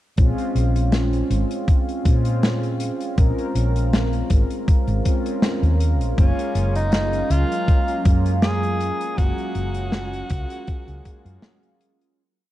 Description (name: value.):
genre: vaporwave.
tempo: 80 BPM.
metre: 4/4.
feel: swing 54% on 16ths.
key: Gb lydian.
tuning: A4 = 440 Hz.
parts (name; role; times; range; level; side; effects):
mellow synth brass; accompaniment; 0.2-12.2 s; Ab3 to Bb4; -26 LUFS; right 1 dB; wide subtle chorus, tape echo.
hollow-body short-scale fingered electric bass; bass; 0.2-11.4 s; Gb1 to Bb2; -21 LUFS; equal; tube saturation.
electronic kick drum; drums; 0.2-11.2 s; none; -18 LUFS; equal; none.
natural country drum kit; drums; 0.2-12.1 s; hi-hat, snare drum; -24 LUFS; equal; none.
breathy tenor saxophone; melody; 6.2-11.8 s; Db4 to Ab4; -27 LUFS; equal; tape echo.
warbly tape-like pad; sustained chords; 6.2-12.1 s; Gb3 to Bb5; -34 LUFS; left 1 dB; chorus, built-in reverb, vintage 12-bit sampler grit.
room: light reverb, small room ambience.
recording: dark, warm production.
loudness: -18 LUFS.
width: side -14 dB against mid.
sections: 0.2-12.2 groove.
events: fade-out 8.2-12.2.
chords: 0.2 Bbm9; 6.2 Gbmaj9.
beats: | 0.18 0.93 1.68 2.43 | 3.18 3.93 4.68 5.43 | 6.18 6.93 7.68 8.43 | 9.18 9.93 10.68 11.43.